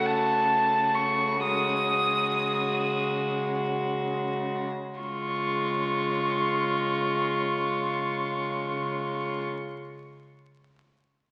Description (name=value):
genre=classical, slow romantic movement for string quartet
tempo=28-47 BPM (dotted quarters)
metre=6/8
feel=rubato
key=Db major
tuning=A4 = 440 Hz
part: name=warm violin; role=melody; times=0.0-9.4 s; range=A5 to Eb6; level=-30 LUFS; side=equal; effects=none
part: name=warm violin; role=second line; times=0.0-9.4 s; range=F4 to Gb4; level=-33 LUFS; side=equal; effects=none
part: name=rich viola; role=accompaniment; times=0.0-9.4 s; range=Ab3 to A3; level=-35 LUFS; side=equal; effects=none
part: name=warm cello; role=bass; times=0.0-9.4 s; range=Db3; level=-38 LUFS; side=equal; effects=none
room=wet concert hall reverb, RT60 1.9 s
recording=very old 78 rpm record, vinyl crackle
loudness=-27 LUFS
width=mono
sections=0.0-5.0 A section; 5.0-8.7 B section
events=slowing down 0.0-5.0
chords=0.0 Gbm/Db; 1.4 Ab5/Db